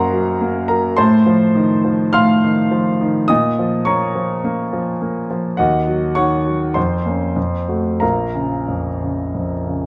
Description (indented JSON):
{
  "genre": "classical, virtuoso piano study",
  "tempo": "102 BPM",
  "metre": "4/4",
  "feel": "uneven beats, rubato",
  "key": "Bb minor",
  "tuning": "A4 = 440 Hz",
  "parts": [
    { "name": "clear grand piano", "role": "solo", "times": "0.0-9.9 s", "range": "Bb1 to F6", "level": "-18 LUFS", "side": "equal", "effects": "none" }
  ],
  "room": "moderate recital hall reverb, RT60 1.5 s",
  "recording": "dark, warm production",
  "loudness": "-17 LUFS",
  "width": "mono",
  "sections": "0.0-9.9 A section",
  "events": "none",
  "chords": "0.0 Ebm/Gb; 1.0 F7/A; 3.3 Bbm; 5.6 Ebm7; 6.8 Bbm/F; 7.4 F; 8.0 Bbm"
}